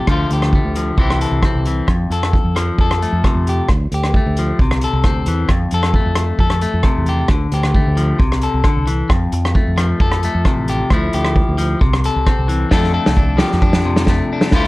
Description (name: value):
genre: highlife guitar band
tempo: 133 BPM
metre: 4/4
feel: swing 53% on 16ths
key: F major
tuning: A4 = 437 Hz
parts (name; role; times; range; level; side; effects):
- electric guitar at the edge of break-up; accompaniment; 0.0-14.7 s; F2 to A4; -19 LUFS; left 2 dB; none
- fingered electric bass; bass; 0.1-14.7 s; A1 to F2; -19 LUFS; equal; none
- vintage drum kit; drums; 0.1-14.7 s; hi-hat, kick drum, rim click, snare drum; -17 LUFS; equal; none
room: light reverb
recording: none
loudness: -14 LUFS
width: side -19 dB against mid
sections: 0.0-12.7 A section; 12.7-14.7 B section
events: none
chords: 0.1 Dm; 1.0 C; 1.9 F; 3.7 Dm; 4.6 C; 5.5 F; 7.3 Dm; 8.2 C; 9.1 F; 10.9 Dmadd9; 11.8 C; 12.7 F6